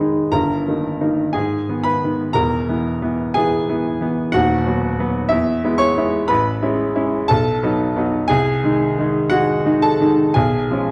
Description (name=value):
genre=classical, romantic character piece for solo piano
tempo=60 BPM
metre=2/4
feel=uneven beats, rubato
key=unclear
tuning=A4 = 436 Hz
part: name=clear baby grand piano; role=solo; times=0.0-10.9 s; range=D#1 to C#6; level=-18 LUFS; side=equal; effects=none
room=wet recital hall reverb, RT60 1.4 s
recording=dark, warm production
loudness=-18 LUFS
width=mono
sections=0.0-10.9 A section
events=none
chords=0.3 D#/G; 1.3 G#m; 2.4 E; 4.3 B/D#; 5.3 E; 6.3 Amaj7; 7.3 B; 8.3 G#/B#; 10.4 C#7/B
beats=| 0.33 1.35 | 2.36 3.37 | 4.35 5.31 | 6.29 7.29 | 8.29 9.31 | 10.35